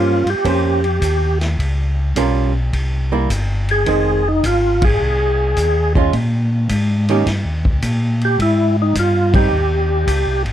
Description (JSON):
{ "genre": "soul jazz organ trio", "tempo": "106 BPM", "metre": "4/4", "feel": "swing 68% on 8ths", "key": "Bb dorian", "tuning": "A4 = 440 Hz", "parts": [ { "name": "overdriven tonewheel organ", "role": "melody", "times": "0.0-10.4 s", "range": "Eb4 to Ab4", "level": "-17 LUFS", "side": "equal", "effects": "slow rotary speaker, chorus vibrato" }, { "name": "archtop guitar, miked and amplified", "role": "accompaniment", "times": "0.0-9.5 s", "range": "Eb3 to C5", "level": "-19 LUFS", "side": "right 6 dB", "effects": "none" }, { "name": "mellow tonewheel organ", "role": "bass", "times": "0.0-10.5 s", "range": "F1 to Bb2", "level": "-18 LUFS", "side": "equal", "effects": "chorus vibrato, slow rotary speaker" }, { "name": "vintage drum kit", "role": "drums", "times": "0.3-10.5 s", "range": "hi-hat, kick drum, ride cymbal, snare drum", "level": "-23 LUFS", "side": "equal", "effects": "none" } ], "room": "light reverb", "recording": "dark, warm production", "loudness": "-14 LUFS", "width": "side -11 dB against mid", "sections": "0.0-10.5 A section", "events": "band accent 4.7, 9.2", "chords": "0.0 Bbm69; 1.6 Gm7b5; 2.7 C7; 3.9 Fm7; 6.1 Bbm7; 7.3 Eb7; 8.4 Abmaj7" }